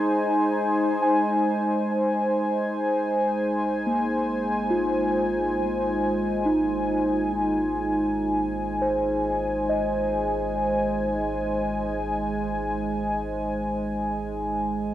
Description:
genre	ambient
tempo	free time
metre	none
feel	none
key	Ab major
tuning	A4 = 441 Hz
part	warm analog pad	sustained chords	0.0-14.9 s	Ab3 to Ab5	-24 LUFS	equal	chorus, cassette tape
part	analog drone	drone	0.0-1.8 s	Ab3 to Ab4	-35 LUFS	left 1 dB	chorus, cassette tape
part	muted felt-like synth keys	arpeggios	1.0-14.9 s	Ab3 to Ab5	-27 LUFS	equal	chorus, cassette tape, analog delay
part	round analog bass	bass	1.7-14.9 s	Ab1	-39 LUFS	equal	none
room	wet spring reverb, RT60 1.2 s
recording	home recording on cassette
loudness	-22 LUFS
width	side -12 dB against mid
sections	0.0-1.7 A section; 1.7-14.9 B section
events	none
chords	0.0 Ab

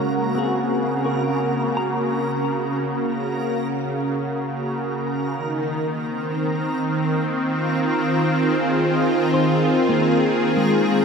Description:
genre	ambient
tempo	free time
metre	none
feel	none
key	unclear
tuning	A4 = 440 Hz
part	warm analog pad	sustained chords	0.0-11.0 s	Db3 to Bb4	-20 LUFS	equal	chorus
part	clean electric guitar	arpeggios	0.0-11.0 s	Ab3 to Bb5	-26 LUFS	left 1 dB	tremolo, ping-pong delay
part	backwards swelling texture	texture	0.0-11.0 s	Bb4 to Bb5	-32 LUFS	left 1 dB	built-in reverb
room	wet cathedral reverb, RT60 5.6 s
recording	none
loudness	-19 LUFS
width	side -5 dB against mid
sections	0.0-11.0 A section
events	fade-in on synth texture 0.0-11.0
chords	0.0 Gb; 5.4 Fm7

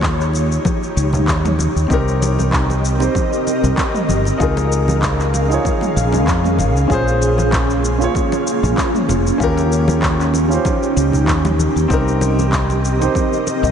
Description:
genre	sunset chillout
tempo	96 BPM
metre	4/4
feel	swing 54% on 16ths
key	unclear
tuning	A4 = 440 Hz
part	ethereal airy pad	sustained chords	0.0-13.7 s	Bb3 to F5	-20 LUFS	equal	ensemble chorus, built-in reverb, tremolo
part	mellow fretless electric bass	bass	0.0-13.7 s	F1 to F2	-17 LUFS	equal	none
part	deep house drum kit	drums	0.0-13.7 s	handclaps, shaker, toms	-24 LUFS	equal	none
part	electronic kick drum	drums	0.0-13.3 s	none	-21 LUFS	equal	none
part	congas	percussion	0.3-13.7 s	none	-27 LUFS	left 3 dB	none
part	warm grand piano	accompaniment	1.9-13.7 s	C4 to Db5	-20 LUFS	moving between left 4 dB and right 6 dB	auto-pan, tape echo
room	moderate cathedral reverb, RT60 6.0 s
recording	dreamy mix soaked in reverb, nothing above 10.3 kHz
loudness	-14 LUFS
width	side -8 dB against mid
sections	0.0-13.7 A section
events	none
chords	0.0 Eb7; 1.9 Cm7; 4.4 Db6; 6.9 Bbm7; 9.4 Eb7; 11.9 Cm7

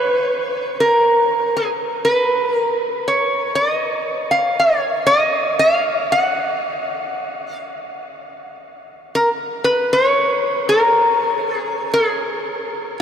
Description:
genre	hawaiian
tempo	79 BPM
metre	4/4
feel	swing 62% on 8ths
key	F# major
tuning	A4 = 440 Hz
part	metal-body resonator slide guitar	solo	0.0-13.0 s	G#4 to F#5	-16 LUFS	equal	none
room	wet huge ambient reverb, RT60 8.2 s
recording	in a vast, echoing space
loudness	-15 LUFS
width	side -8 dB against mid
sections	0.0-9.2 A section; 9.2-13.0 A section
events	none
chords	none

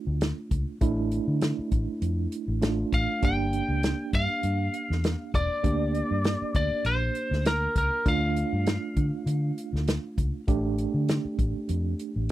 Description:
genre	straight-eighth soul blues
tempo	99 BPM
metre	4/4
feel	swing 55% on 16ths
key	D minor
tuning	A4 = 440 Hz
part	mellow tine electric piano	accompaniment	0.0-12.3 s	A3 to G4	-31 LUFS	right 5 dB	fast stereo tremolo
part	vintage muted fingered electric bass	bass	0.1-12.3 s	E1 to D3	-28 LUFS	equal	none
part	warm soul drum kit	drums	0.2-12.3 s	hi-hat, kick drum, snare drum	-27 LUFS	equal	none
part	lightly driven lead guitar	melody	2.9-10.4 s	Bb4 to G5	-29 LUFS	left 2 dB	none
room	little or no reverb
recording	none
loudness	-24 LUFS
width	side -14 dB against mid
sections	0.0-12.3 A section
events	none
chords	0.0 Dm; 3.2 Gm; 8.1 Dm

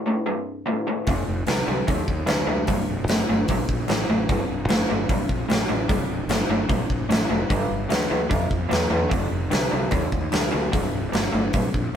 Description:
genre	blues rock power trio and southern rock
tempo	149 BPM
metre	4/4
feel	straight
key	C mixolydian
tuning	A4 = 440 Hz
part	raw garage guitar	riff	0.0-11.9 s	C2 to E3	-24 LUFS	equal	overdrive
part	fuzz fingered electric bass	bass	1.1-12.0 s	C1 to F2	-28 LUFS	equal	overdrive
part	huge arena drum kit	drums	1.1-11.8 s	hi-hat, kick drum, snare drum	-24 LUFS	equal	none
room	light reverb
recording	band playing live in one room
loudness	-20 LUFS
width	side -9 dB against mid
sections	0.0-12.0 A section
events	none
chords	0.0 C5; 1.1 F5; 2.7 C5; 7.5 G5; 9.1 F5; 10.7 C5

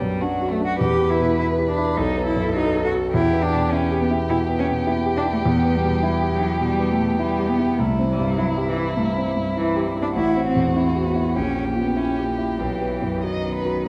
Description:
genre	quick classical-period movement for piano trio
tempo	102 BPM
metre	4/4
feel	rubato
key	E minor from 5.5 s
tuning	A4 = 439 Hz
part	rich violin	melody	0.0-13.9 s	G3 to D#5	-29 LUFS	equal	none
part	warm concert grand piano	accompaniment	0.0-13.9 s	A1 to A4	-24 LUFS	equal	none
part	rich cello	second line	0.2-13.9 s	D#3 to G4	-26 LUFS	equal	none
room	wet recital hall reverb, RT60 1.5 s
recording	dark, warm production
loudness	-21 LUFS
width	mono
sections	0.0-13.9 A section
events	none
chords	0.0 Bm; 0.8 Em; 2.0 B5; 3.1 Em; 7.8 C; 10.2 F#m7b5/A; 11.4 A#dim7; 12.6 B

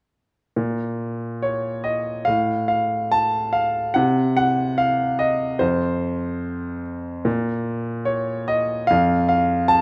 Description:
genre	classical, lyrical solo piano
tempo	73 BPM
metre	4/4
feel	rubato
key	unclear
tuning	A4 = 439 Hz
part	bright concert grand piano	solo	0.6-9.8 s	F2 to A5	-22 LUFS	equal	none
room	moderate recital hall reverb, RT60 1.4 s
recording	none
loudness	-22 LUFS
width	mono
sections	0.6-9.8 A section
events	none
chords	none

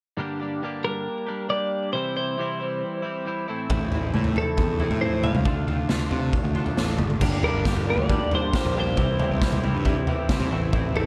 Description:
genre	indie rock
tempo	136 BPM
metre	4/4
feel	straight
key	G dorian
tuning	A4 = 440 Hz
part	twelve-string electric guitar	riff	0.2-11.1 s	G2 to G4	-32 LUFS	equal	subtle chorus
part	twelve-string electric guitar	melody	0.8-11.1 s	A4 to F5	-30 LUFS	equal	none
part	fuzz picked electric bass	bass	3.7-11.0 s	G1 to C3	-29 LUFS	equal	overdrive
part	raw garage drum kit	drums	3.7-11.1 s	crash cymbal, kick drum, snare drum, toms	-27 LUFS	equal	none
part	electric guitar through a small old amp	riff	7.2-11.1 s	E3 to G4	-34 LUFS	equal	analog chorus
room	moderate studio reverb, RT60 0.5 s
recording	dark, warm production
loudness	-25 LUFS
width	mono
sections	0.2-7.2 A section; 7.2-11.1 B section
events	none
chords	0.2 Gm; 1.9 C; 3.5 Am; 5.5 Dm; 7.2 Gm; 9.0 C; 10.5 Am

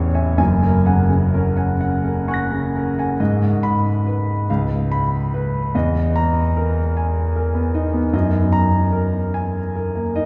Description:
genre	classical, impressionist solo piano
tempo	41-52 BPM (dotted quarters)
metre	6/8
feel	rubato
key	unclear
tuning	A4 = 438 Hz
part	warm concert grand piano	solo	0.0-10.3 s	F#1 to A#6	-19 LUFS	equal	none
room	wet cathedral reverb, RT60 4.3 s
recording	heard from further back in the room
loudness	-19 LUFS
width	mono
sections	0.0-3.2 A section; 3.2-10.3 B section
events	none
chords	0.4 F#add9; 3.2 G#m; 4.5 C#7; 5.7 Emaj7#11; 8.1 F#69

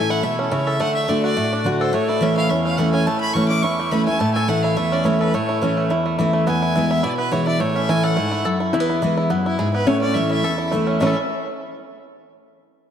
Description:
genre	bluegrass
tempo	212 BPM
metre	4/4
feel	swing 53% on 8ths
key	A major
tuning	A4 = 439 Hz
part	clear fiddle	melody	0.0-11.1 s	E4 to D6	-25 LUFS	equal	ping-pong delay
part	picked steel-string acoustic guitar	accompaniment	0.0-11.1 s	E2 to F#4	-20 LUFS	equal	lush chorus
part	bluegrass banjo	arpeggios	0.0-11.2 s	A3 to A4	-22 LUFS	right 2 dB	none
part	lap resonator guitar	second line	8.7-11.2 s	C#4 to E4	-24 LUFS	left 3 dB	none
room	moderate plate reverb, RT60 2.5 s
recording	dreamy mix soaked in reverb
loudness	-17 LUFS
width	side -8 dB against mid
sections	0.0-8.7 A section; 8.7-11.0 B section; 11.0-12.1 C section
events	none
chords	0.0 A; 0.8 D; 1.9 A; 6.5 E; 7.6 A; 8.7 E; 9.9 A

